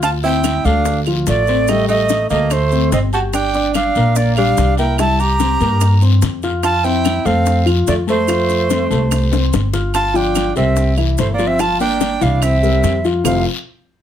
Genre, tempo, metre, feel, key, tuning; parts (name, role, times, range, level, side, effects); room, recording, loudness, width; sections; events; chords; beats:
Afro-Cuban jazz; 145 BPM; 4/4; straight; F major; A4 = 440 Hz
breathy bright jazz flute; melody; 0.0-13.4 s; C5 to Bb5; -18 LUFS; right 3 dB
breathy tenor saxophone; second line; 0.0-13.5 s; C3 to G4; -22 LUFS; right 4 dB
warm baby grand piano; accompaniment; 0.0-13.4 s; E3 to G6; -20 LUFS; left 5 dB
upright bass; bass; 0.0-13.4 s; F1 to G2; -17 LUFS; equal
bongos; percussion; 0.0-13.3 s; -23 LUFS; left 7 dB
claves; percussion; 0.0-13.3 s; -29 LUFS; right 10 dB
guiro; percussion; 0.0-13.3 s; -30 LUFS; left 6 dB
maracas; percussion; 0.0-13.3 s; -31 LUFS; right 8 dB
light reverb; -13 LUFS; side -10 dB against mid
0.0-9.9 A section; 9.9-13.3 B section
drum fill 9.3-9.9
0.0 Dm9; 1.7 Ebmaj7#11/A; 2.5 D5; 3.3 Gm7; 5.0 C5; 6.6 F; 9.9 Gm7; 10.8 C7; 11.6 Gm7; 12.4 C7; 13.3 Fmaj7
| 0.03 0.44 0.85 1.27 | 1.68 2.09 2.51 2.92 | 3.33 3.75 4.16 4.57 | 4.98 5.40 5.81 6.22 | 6.64 7.05 7.46 7.88 | 8.29 8.70 9.12 9.53 | 9.94 10.36 10.77 11.18 | 11.60 12.01 12.42 12.84 | 13.25